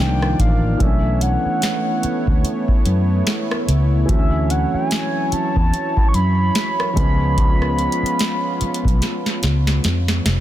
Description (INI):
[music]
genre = contemporary R&B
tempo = 73 BPM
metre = 4/4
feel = swing 58% on 16ths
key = B dorian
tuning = A4 = 440 Hz
[part]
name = mellow horn-like synth lead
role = melody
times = 0.0-9.8 s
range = E5 to C#6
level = -24 LUFS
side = equal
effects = chorus, ping-pong delay
[part]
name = dark baby grand piano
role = accompaniment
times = 0.0-10.4 s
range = Eb3 to D4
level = -25 LUFS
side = right 1 dB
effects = none
[part]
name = warm analog pad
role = sustained chords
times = 0.0-10.4 s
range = Eb3 to D5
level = -26 LUFS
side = right 1 dB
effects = chorus
[part]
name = vintage muted fingered electric bass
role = bass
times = 0.0-10.4 s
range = E#1 to F#2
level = -18 LUFS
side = equal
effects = none
[part]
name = booming analog drum machine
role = drums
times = 0.2-10.4 s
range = hi-hat, kick drum, rim click, snare drum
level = -19 LUFS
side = equal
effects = none
[sound]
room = little or no reverb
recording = dense, heavily limited modern master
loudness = -16 LUFS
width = side -13 dB against mid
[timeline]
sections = 0.0-10.4 A section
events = drum fill 9.0-10.4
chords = 0.0 Cm11; 0.8 Bm11; 4.1 Dmaj9; 7.0 C#7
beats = | 0.80 1.62 2.44 3.27 | 4.09 4.91 5.73 6.55 | 7.38 8.20 9.02 9.84